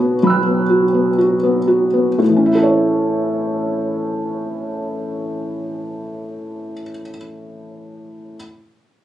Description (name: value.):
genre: neoclassical minimalist piano.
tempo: 60 BPM.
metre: 4/4.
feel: rubato.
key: A major.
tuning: A4 = 440 Hz.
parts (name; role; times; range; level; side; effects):
felt-muted upright piano; solo; 0.0-8.4 s; A2 to F#6; -16 LUFS; equal; none.
room: light reverb.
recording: recorded on a phone in the room, club ambience.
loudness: -15 LUFS.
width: side -12 dB against mid.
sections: 0.0-2.2 A section; 2.2-6.2 B section.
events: slowing down 0.0-2.2.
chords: 0.0 Esus2/B; 2.2 A.